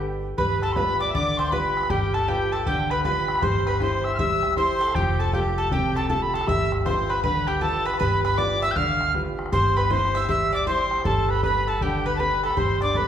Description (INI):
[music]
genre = celtic folk, Celtic hornpipe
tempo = 157 BPM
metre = 4/4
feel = swing 63% on 8ths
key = G mixolydian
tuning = A4 = 440 Hz
[part]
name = bright upright piano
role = accompaniment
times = 0.0-13.1 s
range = C3 to C5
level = -28 LUFS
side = right 1 dB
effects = none
[part]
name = upright bass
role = bass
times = 0.0-13.1 s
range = F1 to G1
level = -29 LUFS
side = equal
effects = none
[part]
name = wooden whistle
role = melody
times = 0.4-13.1 s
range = G5 to G6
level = -25 LUFS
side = right 1 dB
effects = none
[part]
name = accordion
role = second line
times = 0.4-13.1 s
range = G4 to F5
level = -29 LUFS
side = left 2 dB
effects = none
[part]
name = bowl-back mandolin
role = second line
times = 0.4-13.1 s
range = G4 to G5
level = -31 LUFS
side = right 2 dB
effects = none
[part]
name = bodhran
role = percussion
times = 0.4-13.1 s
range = none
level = -29 LUFS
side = left 1 dB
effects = none
[sound]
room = wet large studio reverb, RT60 1.4 s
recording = band playing live in one room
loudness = -20 LUFS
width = side -9 dB against mid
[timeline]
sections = 0.4-12.6 A section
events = none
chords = 0.4 G7; 3.4 C/G; 5.0 Fadd9; 6.5 G7; 9.5 C/G; 11.1 Gadd9; 12.6 Gsus2